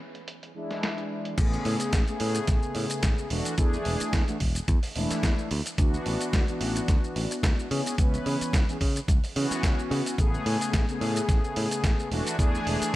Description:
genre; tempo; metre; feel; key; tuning
nu-disco, nu disco; 109 BPM; 4/4; swing 54% on 16ths; A major; A4 = 440 Hz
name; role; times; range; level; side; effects
dusty soul sampler-style drum kit; drums; 0.1-12.9 s; crash cymbal, hi-hat, shaker, snare drum; -33 LUFS; right 1 dB; overdrive, low-pass filter on hats, studio reverb, low-pass filter on snare, low-pass filter on cymbals, low-pass filter on perc
mellow synth brass; accompaniment; 0.5-13.0 s; C#3 to B4; -30 LUFS; left 1 dB; chorus, tape echo
picked electric bass; bass; 1.4-12.8 s; E1 to C#3; -30 LUFS; equal; none
electronic kick drum; drums; 1.4-12.5 s; none; -24 LUFS; equal; studio reverb
room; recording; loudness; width
digital ambience; none; -24 LUFS; side -16 dB against mid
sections
0.0-1.4 A section; 1.4-13.0 B section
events
drop 1.4-13.0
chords
0.3 E7; 1.4 Amaj9; 3.3 E9sus4; 5.5 D69; 7.7 C#m7; 10.2 Amaj9; 12.1 E9sus4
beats
0.28 0.83 | 1.38 1.93 2.48 3.03 | 3.58 4.13 4.68 5.23 | 5.78 6.33 6.88 7.43 | 7.98 8.54 9.09 9.64 | 10.19 10.74 11.29 11.84 | 12.39 12.94

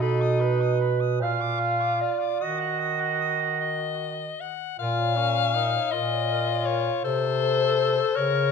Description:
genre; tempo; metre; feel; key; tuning
classical, lyrical piece for single-reed quartet; 48-56 BPM (dotted quarters); 6/8; rubato; Eb minor, Bb minor from 4.8 s; A4 = 440 Hz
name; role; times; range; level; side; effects
bright soprano saxophone; melody; 0.0-8.5 s; C5 to Eb6; -27 LUFS; left 8 dB; none
dark clarinet; second line; 0.0-8.5 s; A4 to F5; -29 LUFS; right 8 dB; none
warm tenor saxophone; accompaniment; 0.0-8.5 s; Db4 to Bb4; -30 LUFS; left 4 dB; none
mellow bass clarinet; bass; 0.0-8.5 s; Bb2 to Eb3; -27 LUFS; right 2 dB; none
room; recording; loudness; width
moderate recital hall reverb, RT60 1.3 s; dark, warm production; -22 LUFS; side -6 dB against mid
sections
0.0-4.8 A section; 4.8-8.5 B section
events
none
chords
0.0 B7; 1.2 Bb; 2.4 Ebm; 4.8 Bbm; 7.0 Am/C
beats
| 0.01 1.22 | 2.41 3.61 | 4.79 5.92 | 7.04 8.16

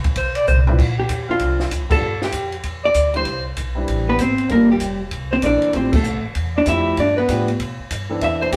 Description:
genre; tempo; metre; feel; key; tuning
jazz, small-group swing and bop; 194 BPM; 4/4; swing 63% on 8ths; C major; A4 = 439 Hz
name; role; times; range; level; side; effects
upright bass; bass; 0.0-8.6 s; F1 to B2; -26 LUFS; equal; none
compact cocktail drum kit; drums; 0.0-8.6 s; crash cymbal, hi-hat, kick drum, ride cymbal, snare drum, toms; -27 LUFS; equal; none
clear alto saxophone; second line; 0.2-8.6 s; F4 to E5; -26 LUFS; equal; none
warm concert grand piano; accompaniment; 0.7-8.6 s; E3 to E5; -29 LUFS; equal; none
vintage hollow-body jazz guitar; melody; 1.0-8.5 s; G3 to E5; -21 LUFS; equal; none
room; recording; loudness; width
wet large studio reverb, RT60 0.9 s; band playing live in one room; -19 LUFS; mono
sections
0.8-8.6 A section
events
drum fill 0.5-0.8; band accent 1.9, 5.9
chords
0.0 Cmaj7; 0.8 Dm9; 2.0 G7(no3); 3.3 Cmaj7; 4.5 Gm7; 5.1 C7; 5.7 Fmaj7; 7.0 G7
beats
0.17 0.48 | 0.79 1.10 1.41 1.71 | 2.02 2.33 2.64 2.95 | 3.26 3.57 3.88 4.19 | 4.50 4.81 5.12 5.43 | 5.74 6.05 6.36 6.67 | 6.97 7.28 7.59 7.90 | 8.21 8.52

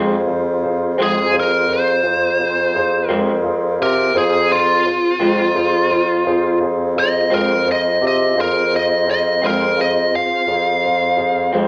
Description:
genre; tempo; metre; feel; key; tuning
slow blues; 57 BPM (dotted quarters); 12/8; straight; F minor; A4 = 441 Hz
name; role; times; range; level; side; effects
dark grand piano; accompaniment; 0.0-11.7 s; F4 to C5; -27 LUFS; equal; none
electric guitar through a small old amp; accompaniment; 0.0-11.7 s; F2 to C4; -24 LUFS; equal; harmonic tremolo
mellow tonewheel organ; sustained chords; 0.0-11.7 s; C4 to C5; -28 LUFS; equal; chorus vibrato, slow rotary speaker
warm bassoon; bass; 0.0-11.7 s; F2 to C3; -23 LUFS; equal; none
biting lead guitar; melody; 1.0-11.5 s; F4 to F5; -19 LUFS; equal; overdrive
room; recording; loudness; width
moderate large studio reverb, RT60 0.9 s; band playing live in one room; -17 LUFS; mono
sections
0.0-11.7 A section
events
lead electric guitar solo 0.0-11.7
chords
0.0 Fm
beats
0.99 2.04 3.10 | 4.15 5.21 6.26 7.32 | 8.37 9.43 10.48 11.54

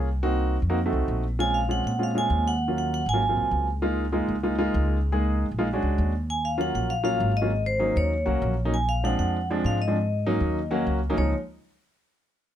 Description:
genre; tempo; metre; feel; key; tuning
Afro-Cuban jazz; 196 BPM; 4/4; straight; Db major; A4 = 441 Hz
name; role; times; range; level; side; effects
warm concert grand piano; accompaniment; 0.0-11.3 s; F3 to Ab4; -26 LUFS; equal; none
upright bass; bass; 0.0-11.3 s; Ab1 to Bb2; -26 LUFS; equal; none
vibraphone with medium hard mallets; melody; 1.4-3.6, 6.3-11.3 s; C5 to Ab5; -27 LUFS; equal; none
room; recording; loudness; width
little or no reverb; close, detailed microphones; -22 LUFS; side -10 dB against mid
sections
0.0-6.3 A section; 6.3-11.2 B section; 11.2-12.4 C section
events
none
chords
0.2 Cm7b5; 0.8 F7b9; 1.4 Bbm7; 2.6 Ebm7; 3.2 Ab13; 3.8 Db69; 5.7 Bb7alt; 6.3 Ebm7; 7.5 Ab7sus4; 8.7 Bb9; 9.9 Ab7sus4; 11.2 Db69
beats
| 0.16 0.47 0.77 1.08 | 1.38 1.69 1.99 2.30 | 2.61 2.91 3.22 3.52 | 3.83 4.14 4.44 4.75 | 5.05 5.36 5.67 5.97 | 6.28 6.58 6.89 7.20 | 7.50 7.81 8.11 8.42 | 8.73 9.03 9.34 9.64 | 9.95 10.26 10.56 10.87 | 11.17

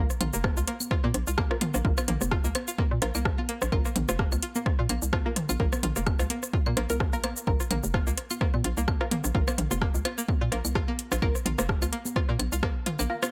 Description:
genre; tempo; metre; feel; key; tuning
minimal techno; 128 BPM; 4/4; swing 55% on 16ths; Bb minor; A4 = 441 Hz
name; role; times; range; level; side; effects
string-like resonator pluck; riff; 0.0-13.2 s; Bb3 to Bb4; -38 LUFS; equal; chorus, sidechain pumping, delay
filtered dub chord stab; stabs; 0.0-13.2 s; Bb3 to Bb4; -38 LUFS; equal; phaser, delay
hollow knocking FM bass; bass; 0.0-13.1 s; F1 to Bb2; -32 LUFS; equal; sidechain pumping
garage drum kit; drums; 0.1-13.3 s; hi-hat, rim click, shaker; -34 LUFS; equal; none
garage drum kit; percussion; 0.1-13.3 s; claves, congas, rim click, toms; -35 LUFS; equal; overdrive, delay
electronic kick drum; drums; 0.4-12.7 s; none; -30 LUFS; equal; none
room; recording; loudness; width
digital ambience; none; -27 LUFS; mono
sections
0.0-13.3 A section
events
none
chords
0.0 Bb5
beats
0.44 0.91 1.38 | 1.85 2.32 2.79 3.25 | 3.72 4.19 4.66 5.13 | 5.60 6.07 6.54 7.00 | 7.47 7.94 8.41 8.88 | 9.35 9.82 10.29 10.75 | 11.22 11.69 12.16 12.63 | 13.10

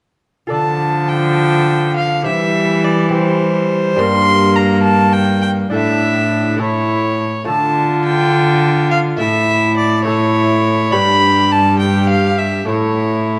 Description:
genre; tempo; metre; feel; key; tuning
classical, renaissance-style consort dance; 69 BPM (dotted quarters); 6/8; straight; D minor; A4 = 440 Hz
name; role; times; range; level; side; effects
warm violin; melody; 0.5-13.4 s; C5 to C6; -19 LUFS; equal; none
lute; accompaniment; 0.5-13.4 s; G2 to D5; -24 LUFS; equal; none
warm viola; accompaniment; 0.5-13.4 s; F3 to G4; -22 LUFS; equal; none
rich cello; bass; 0.5-13.4 s; G2 to E3; -19 LUFS; equal; none
room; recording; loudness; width
moderate recital hall reverb, RT60 1.5 s; close, detailed microphones; -15 LUFS; mono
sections
0.5-13.4 A section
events
none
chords
0.5 Dm; 2.3 C/E; 4.0 Gm; 5.7 Asus4; 6.6 A; 7.5 Dm; 9.2 A; 10.9 G; 12.7 A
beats
| 0.52 1.39 | 2.26 3.13 | 3.99 4.86 | 5.73 6.60 | 7.48 8.34 | 9.21 10.07 | 10.94 11.81 | 12.69

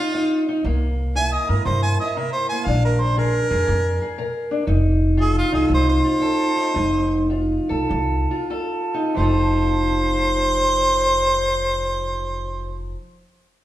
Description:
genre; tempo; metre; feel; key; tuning
blues; 90-119 BPM; 4/4; swing 67% on 8ths; F mixolydian; A4 = 445 Hz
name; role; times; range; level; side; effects
warm harmonica; melody; 0.0-12.9 s; F4 to Ab5; -21 LUFS; right 1 dB; none
fingerpicked steel-string acoustic guitar; accompaniment; 0.0-13.0 s; F2 to Bb4; -22 LUFS; equal; none
upright bass; bass; 0.6-12.9 s; F1 to G2; -22 LUFS; equal; none
room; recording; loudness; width
wet stone room reverb, RT60 1.3 s; band playing live in one room, lossy compression artefacts; -18 LUFS; side -13 dB against mid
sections
0.0-9.2 A section; 9.2-13.6 B section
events
slowing down 4.7-9.2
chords
0.0 F7(no3); 0.7 C7; 2.7 Bb7; 4.7 F7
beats
0.15 | 0.65 1.16 1.66 2.16 | 2.67 3.17 3.67 4.18 | 4.68 5.19 5.70 6.22 | 6.76 7.32 7.91 8.52 | 9.16 9.83 10.50 11.17 | 11.84 12.50

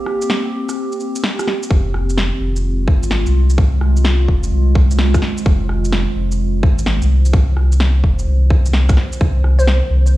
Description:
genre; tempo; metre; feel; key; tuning
future garage; 128 BPM; 4/4; swing 66% on 16ths; F minor; A4 = 440 Hz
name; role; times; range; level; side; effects
warbly tape-like pad; sustained chords; 0.0-10.2 s; Eb3 to C5; -23 LUFS; right 1 dB; chorus, built-in reverb, vintage 12-bit sampler grit, sidechain pumping
electronic rim click, shaker and snare drum; drums; 0.1-10.1 s; none; -22 LUFS; equal; none
warm sub bass; bass; 1.7-10.2 s; F1 to C2; -14 LUFS; equal; tube saturation, sidechain pumping
electronic kick drum; drums; 1.7-9.3 s; none; -14 LUFS; equal; none
glassy wavetable pluck; melody; 9.6-9.8 s; C5; -21 LUFS; equal; chorus, cassette tape, tape echo
room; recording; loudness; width
little or no reverb; played on a big sound system in a bare room, cassette tape, stone room reverb; -13 LUFS; side -16 dB against mid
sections
0.0-1.7 A section; 1.7-10.2 B section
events
break 0.0-1.7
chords
0.0 C7(no3); 1.7 Fm7; 9.2 Cm7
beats
0.30 0.77 1.23 | 1.70 2.17 2.64 3.11 | 3.58 4.05 4.52 4.98 | 5.45 5.92 6.39 6.86 | 7.33 7.80 8.27 8.73 | 9.20 9.67 10.14

